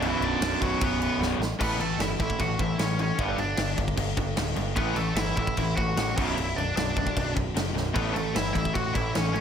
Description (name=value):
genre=punk rock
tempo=151 BPM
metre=4/4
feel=straight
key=unclear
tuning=A4 = 439 Hz
part: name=high-gain lead guitar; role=melody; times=0.0-9.4 s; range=E3 to F#5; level=-30 LUFS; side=equal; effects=distortion
part: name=distorted electric guitar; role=riff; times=0.0-9.4 s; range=B1 to A3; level=-32 LUFS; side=left 11 dB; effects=overdrive
part: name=raw garage guitar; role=riff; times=0.0-9.4 s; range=B1 to A3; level=-32 LUFS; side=right 12 dB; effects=overdrive
part: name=growling picked electric bass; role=bass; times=0.0-9.4 s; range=B0 to A1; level=-31 LUFS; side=equal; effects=overdrive
part: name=big rock drum kit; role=drums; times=0.0-9.4 s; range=crash cymbal, kick drum, snare drum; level=-30 LUFS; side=equal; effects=none
room=light reverb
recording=none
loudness=-24 LUFS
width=side -8 dB against mid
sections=0.0-1.6 A section; 1.6-9.4 B section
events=drum fill 1.2-1.6, 7.8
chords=0.0 Bm; 1.6 A; 3.2 G; 4.8 A5; 6.2 Bm; 8.0 A